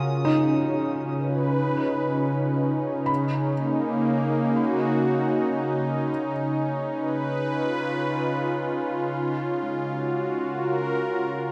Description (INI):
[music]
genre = ambient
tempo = free time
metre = none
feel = none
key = Db mixolydian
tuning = A4 = 440 Hz
[part]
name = warm analog pad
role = sustained chords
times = 0.0-11.5 s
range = Db3 to Cb5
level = -26 LUFS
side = equal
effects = chorus, shimmer reverb
[part]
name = felt-muted upright piano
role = arpeggios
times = 0.2-11.5 s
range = Ab3 to Cb6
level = -34 LUFS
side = equal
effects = delay, shimmer reverb
[sound]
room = wet cathedral reverb, RT60 5.8 s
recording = in a vast, echoing space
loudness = -25 LUFS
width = mono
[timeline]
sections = 0.1-11.5 A section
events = fade-out on felt piano 0.1-11.5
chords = 0.1 Db7; 3.1 Cbmaj7/Db; 6.1 Db7; 9.1 Ebm7/Db